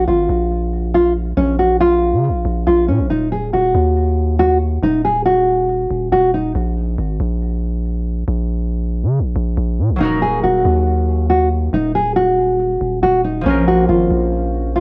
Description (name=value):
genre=hip hop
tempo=139 BPM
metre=4/4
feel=half-time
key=Eb minor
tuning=A4 = 440 Hz
part: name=nylon-string guitar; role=melody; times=0.0-6.5, 10.0-14.8 s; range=Db4 to Ab4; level=-18 LUFS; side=equal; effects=plate reverb
part: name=long sustained 808-style bass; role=bass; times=0.0-14.8 s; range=Eb1 to Db3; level=-21 LUFS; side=equal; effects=none
part: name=concert harp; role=accompaniment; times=10.0-14.8 s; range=F3 to Bb4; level=-25 LUFS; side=equal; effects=cassette tape
room=light reverb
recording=home recording on cassette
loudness=-17 LUFS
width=mono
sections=0.0-14.8 A section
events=break 6.6-10.0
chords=0.0 Bb5; 3.1 Ebm; 6.6 N.C.; 10.0 Ebm; 13.5 Bbm